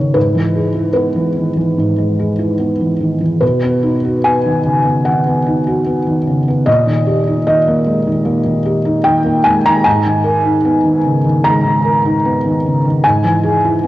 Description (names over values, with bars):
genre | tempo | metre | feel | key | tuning
neoclassical minimalist piano | 75 BPM | 4/4 | rubato | G# minor | A4 = 444 Hz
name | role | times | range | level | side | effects
felt-muted upright piano | solo | 0.0-13.9 s | G#2 to A#5 | -12 LUFS | equal | none
room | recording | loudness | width
moderate lush hall reverb, RT60 2.9 s | home recording on cassette | -12 LUFS | side -16 dB against mid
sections
0.0-13.9 A section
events
none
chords
0.2 E/G#; 3.4 B; 6.7 D#/A#; 9.9 G#madd9; 13.0 E/G#